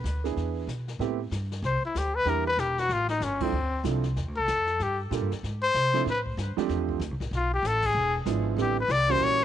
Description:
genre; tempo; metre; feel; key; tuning
jazz, small-group swing and bop; 190 BPM; 4/4; swing 61% on 8ths; A minor; A4 = 440 Hz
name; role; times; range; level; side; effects
upright bass; bass; 0.0-9.4 s; E1 to C3; -30 LUFS; equal; none
jazz brush drum kit; drums; 0.1-9.4 s; brushed snare drum, crash cymbal, hi-hat, kick drum, snare drum; -40 LUFS; left 4 dB; none
warm upright piano; accompaniment; 0.2-9.4 s; D3 to A4; -30 LUFS; right 13 dB; none
clear trumpet; melody; 1.7-9.4 s; C4 to D5; -26 LUFS; left 3 dB; tape echo
room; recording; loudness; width
little or no reverb; 1960s-style stereo, nothing above 10.4 kHz; -25 LUFS; side -10 dB against mid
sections
1.0-9.4 A section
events
band accent 3.4, 7.8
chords
0.4 E7; 1.0 Am7; 2.3 Em7b5; 2.9 Am7; 3.5 Dm7; 4.8 Gm7; 5.4 Caug; 6.1 F69; 7.3 G9; 8.0 E7b9; 8.6 Am11

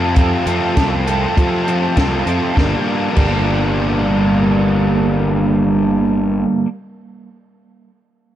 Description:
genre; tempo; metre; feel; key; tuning
indie rock; 100 BPM; 4/4; straight; G minor; A4 = 443 Hz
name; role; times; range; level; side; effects
overdriven electric guitar; riff; 0.0-6.7 s; F2 to D4; -20 LUFS; left 7 dB; none
overdriven electric guitar; riff; 0.0-6.7 s; F3 to A4; -18 LUFS; right 4 dB; ensemble chorus
fuzz picked electric bass; bass; 0.0-6.4 s; G1 to F3; -19 LUFS; equal; overdrive
compact cocktail drum kit; drums; 0.2-3.3 s; crash cymbal, hi-hat, kick drum, snare drum; -17 LUFS; equal; none
room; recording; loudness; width
light reverb; dark, warm production; -14 LUFS; side -11 dB against mid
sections
0.0-2.6 A section; 2.6-5.0 B section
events
none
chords
0.0 F; 2.6 Gm

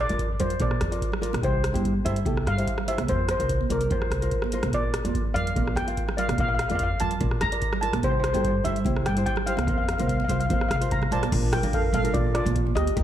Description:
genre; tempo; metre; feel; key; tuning
calypso; 146 BPM; 4/4; straight; Bb major; A4 = 440 Hz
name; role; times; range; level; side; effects
steel pan; melody; 0.0-13.0 s; F4 to Bb5; -28 LUFS; equal; slapback echo, tape echo
ukulele; accompaniment; 0.1-13.0 s; D4 to F5; -33 LUFS; left 2 dB; slapback echo
upright bass; bass; 0.1-13.0 s; Bb1 to G2; -27 LUFS; equal; none
booming analog drum machine; drums; 0.1-13.0 s; crash cymbal, hi-hat, kick drum, rim click; -28 LUFS; equal; none
congas; percussion; 0.4-12.9 s; none; -34 LUFS; right 10 dB; slapback echo
room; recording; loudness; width
moderate recital hall reverb, RT60 1.3 s, studio reverb; big arena sound; -22 LUFS; side -11 dB against mid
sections
0.0-11.3 A section; 11.3-13.0 B section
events
none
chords
0.0 Bb; 1.4 C; 3.1 Fsus4; 4.7 Bb; 8.0 C; 9.7 Fsus4; 11.3 Bbmaj7

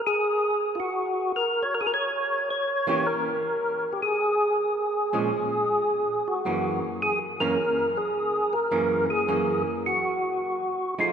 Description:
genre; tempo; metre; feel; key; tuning
jazz; 106 BPM; 4/4; swing 68% on 8ths; unclear; A4 = 441 Hz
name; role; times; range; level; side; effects
percussive tonewheel organ; melody; 0.1-11.1 s; F4 to Db5; -24 LUFS; equal; chorus vibrato, slow rotary speaker
archtop guitar, miked and amplified; accompaniment; 2.9-11.1 s; Gb2 to G#4; -30 LUFS; right 2 dB; none
room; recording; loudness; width
wet church reverb, RT60 3.7 s; recorded in a church or concert hall; -23 LUFS; side -8 dB against mid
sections
0.0-11.1 A section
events
none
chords
0.0 Ebm (rootless); 1.9 Edim7; 4.2 Bbm7; 6.4 Gb7

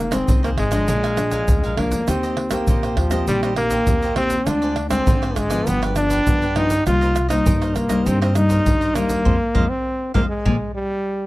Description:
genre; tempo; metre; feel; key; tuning
samba and choro; 100 BPM; 4/4; straight; Eb major; A4 = 439 Hz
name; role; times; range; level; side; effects
bright trombone; melody; 0.0-11.3 s; F3 to F4; -21 LUFS; equal; none
nylon-string guitar; accompaniment; 0.0-10.6 s; F2 to G4; -25 LUFS; left 3 dB; none
upright bass; bass; 0.0-10.6 s; F1 to Ab2; -24 LUFS; equal; none
cavaquinho; accompaniment; 0.1-10.6 s; D4 to Ab5; -31 LUFS; right 4 dB; none
egg shaker, surdo, pandeiro and tamborim; percussion; 0.1-10.6 s; none; -22 LUFS; right 1 dB; none
room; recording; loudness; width
small room ambience; dry, close 1970s-style studio recording; -17 LUFS; side -18 dB against mid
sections
0.0-11.3 A section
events
band accent 9.3-11.3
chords
0.0 Fm7; 0.9 Bb7; 2.1 Eb6; 4.5 Dm7b5; 5.7 G7; 6.9 Cm7; 9.3 Fm7; 10.5 Bb7

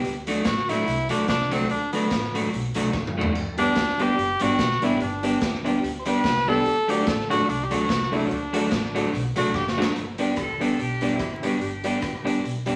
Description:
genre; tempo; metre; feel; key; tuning
ska; 145 BPM; 4/4; swing 56% on 8ths; G major; A4 = 436 Hz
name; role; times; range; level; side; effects
upright bass; bass; 0.0-12.8 s; F#1 to D2; -36 LUFS; equal; none
raw garage drum kit; drums; 0.0-12.7 s; hi-hat, kick drum, rim click, snare drum, splash cymbal, toms; -32 LUFS; equal; slapback echo
vintage hollow-body jazz guitar; accompaniment; 0.3-12.8 s; F#3 to G4; -28 LUFS; equal; slapback echo
clear tenor saxophone; melody; 0.5-9.9 s; B3 to C5; -27 LUFS; equal; none
dark upright piano; stabs; 3.6-12.8 s; D4 to D5; -32 LUFS; equal; none
warm horn section; melody; 10.4-12.3 s; C4 to A4; -35 LUFS; equal; none
room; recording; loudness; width
wet studio reverb, RT60 0.7 s; vinyl crackle; -24 LUFS; mono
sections
0.0-10.0 A section; 10.0-12.8 B section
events
tenor saxophone solo 0.0-10.0; drum fill 2.9-3.3, 9.5-10.0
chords
0.0 D; 3.3 G; 6.7 D; 10.0 G

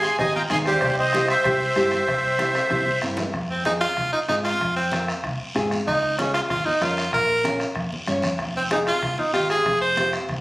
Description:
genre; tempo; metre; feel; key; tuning
latin, cumbia; 190 BPM; 4/4; straight; F minor; A4 = 440 Hz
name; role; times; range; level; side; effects
accordion; melody; 0.0-3.0 s; G4 to C6; -21 LUFS; equal; light tremolo tuning
edgy tenor saxophone; second line; 0.0-10.1 s; G3 to C5; -23 LUFS; right 1 dB; none
fingered electric bass; bass; 0.0-10.4 s; F1 to Ab2; -31 LUFS; equal; none
bombo; percussion; 0.0-10.4 s; none; -30 LUFS; equal; none
guiro; percussion; 0.0-10.4 s; none; -35 LUFS; left 1 dB; none
nylon-string guitar; accompaniment; 0.2-10.2 s; C4 to Db5; -26 LUFS; equal; none
congas; percussion; 0.2-10.4 s; none; -36 LUFS; equal; none
cowbell and timbales; percussion; 0.2-3.3 s; none; -36 LUFS; right 2 dB; none
room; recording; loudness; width
moderate large studio reverb, RT60 0.9 s; recorded on a phone in the room, studio reverb, compression; -20 LUFS; side -20 dB against mid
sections
0.0-3.3 A section; 3.3-10.4 B section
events
drum fill 2.6-3.3; tenor saxophone solo 3.3-10.4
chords
0.0 Ab; 0.8 C; 3.3 Fm; 5.9 Db; 7.1 Bbm; 8.4 Fm

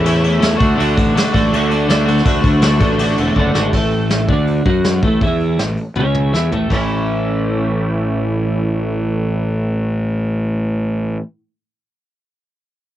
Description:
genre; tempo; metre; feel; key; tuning
indie rock; 161 BPM; 4/4; straight; A major; A4 = 440 Hz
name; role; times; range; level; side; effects
twelve-string electric guitar; riff; 0.0-11.2 s; A2 to F#4; -17 LUFS; equal; double-tracked left and right
fuzz fingered electric bass; bass; 0.0-11.2 s; E1 to F#2; -18 LUFS; equal; overdrive
soft brush drum kit; drums; 0.1-6.8 s; crash cymbal, hi-hat, kick drum, snare drum, toms; -19 LUFS; equal; cassette tape
room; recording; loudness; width
little or no reverb; home recording on cassette; -14 LUFS; side -12 dB against mid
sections
0.0-3.7 A section; 3.7-6.7 B section; 6.7-9.7 C section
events
drum fill 3.4-3.7, 6.0-6.7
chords
0.0 A; 0.6 D; 3.7 A

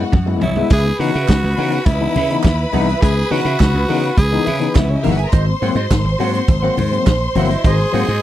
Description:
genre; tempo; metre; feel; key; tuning
disco; 104 BPM; 4/4; straight; C# dorian; A4 = 440 Hz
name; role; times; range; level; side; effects
clear studio string section; second line; 0.0-8.2 s; B3 to B#5; -23 LUFS; equal; none
clean electric guitar; accompaniment; 0.0-8.2 s; E4 to F#5; -26 LUFS; right 5 dB; analog chorus
overdriven tine electric piano; accompaniment; 0.0-8.1 s; G#2 to E4; -21 LUFS; left 6 dB; medium tremolo
slap bass; bass; 0.0-8.2 s; G1 to C#3; -19 LUFS; right 1 dB; none
vintage drum kit; drums; 0.1-8.2 s; crash cymbal, hi-hat, kick drum, snare drum, toms; -15 LUFS; right 1 dB; none
congas; percussion; 0.1-7.5 s; none; -25 LUFS; left 5 dB; none
growling tenor saxophone; melody; 0.4-8.2 s; E4 to G#4; -22 LUFS; right 1 dB; none
group handclap; percussion; 1.3-7.2 s; none; -29 LUFS; right 25 dB; none
room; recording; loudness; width
little or no reverb; dry, close 1970s-style studio recording; -14 LUFS; side -13 dB against mid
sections
0.7-8.2 A section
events
drum fill 0.0-0.7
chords
0.0 F#9sus4; 0.7 C#m7; 5.3 G#7

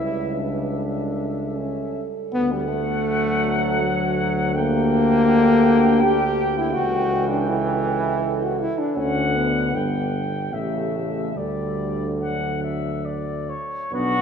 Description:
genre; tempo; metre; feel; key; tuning
classical, hymn-like piece for brass band; 66-83 BPM; 3/4; rubato; D major; A4 = 440 Hz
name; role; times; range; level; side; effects
warm flugelhorn; melody; 0.0-14.2 s; F#4 to G5; -28 LUFS; left 2 dB; none
dark French horn section; second line; 0.0-14.2 s; F#4 to B4; -30 LUFS; right 6 dB; none
warm euphonium; accompaniment; 0.0-14.2 s; F#3 to G4; -23 LUFS; left 2 dB; none
warm trombone; accompaniment; 0.0-14.2 s; C#3 to B3; -30 LUFS; right 3 dB; none
warm tuba; bass; 0.0-14.2 s; G1 to D2; -26 LUFS; right 1 dB; none
room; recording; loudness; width
wet church reverb, RT60 3.1 s; small room ambience; -19 LUFS; side -7 dB against mid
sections
0.0-13.9 A section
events
none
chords
0.0 A7/C#; 2.3 D; 4.6 Gm/D; 6.8 A7/C#; 9.0 D; 9.7 G; 10.5 A7; 11.4 D

